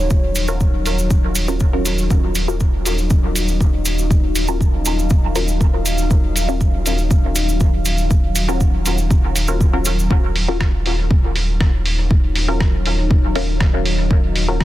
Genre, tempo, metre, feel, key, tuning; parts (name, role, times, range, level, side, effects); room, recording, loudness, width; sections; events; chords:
dub techno; 120 BPM; 4/4; straight; Eb minor; A4 = 435 Hz
deep dark ambient pad; sustained chords; 0.0-14.6 s; Gb3 to F5; -25 LUFS; left 2 dB; chorus, built-in reverb, sidechain pumping
soft dub sub bass; bass; 0.0-14.6 s; Eb1; -20 LUFS; equal; sidechain pumping
electronic kick drum; drums; 0.1-14.6 s; -15 LUFS; equal; studio ambience
cabasa; percussion; 0.1-10.1 s; -26 LUFS; right 1 dB
lo-fi sampler-style drum kit; drums; 0.4-14.6 s; hi-hat, rim click; -25 LUFS; right 1 dB; studio ambience, dub echo
filtered dub chord stab; stabs; 0.5-14.6 s; Db4 to Bb4; -25 LUFS; left 1 dB; phaser, sidechain pumping, dub echo
digital ambience; dense, heavily limited modern master; -15 LUFS; side -15 dB against mid
0.0-10.1 A section; 10.1-14.6 A section
0.0 Ebm9